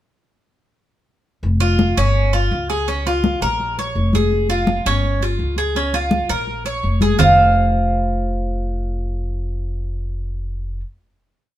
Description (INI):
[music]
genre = latin, Cuban son and guajira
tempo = 167 BPM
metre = 4/4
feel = straight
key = F minor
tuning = A4 = 442 Hz
[part]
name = upright bass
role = bass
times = 1.4-10.8 s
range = F1 to Db2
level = -20 LUFS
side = equal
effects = none
[part]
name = congas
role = percussion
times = 1.4-7.3 s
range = none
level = -21 LUFS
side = left 1 dB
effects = none
[part]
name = Cuban tres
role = arpeggios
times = 1.6-10.8 s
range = Db4 to F5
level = -19 LUFS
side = right 1 dB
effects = none
[sound]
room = moderate studio reverb, RT60 0.8 s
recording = band playing live in one room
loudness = -16 LUFS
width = side -13 dB against mid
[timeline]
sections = 1.4-7.2 montuno (vamp); 7.2-10.1 final chord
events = none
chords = 1.4 Fsus2; 2.2 Db; 3.6 Bbm; 4.3 Fm; 5.0 Db; 6.5 Bbm; 7.2 F5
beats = | 1.43 1.79 2.15 2.51 | 2.87 3.23 3.60 3.96 | 4.32 4.68 5.04 5.40 | 5.76 6.12 6.48 6.84 | 7.20 7.56 7.92 8.28 | 8.64 9.00 9.36 9.72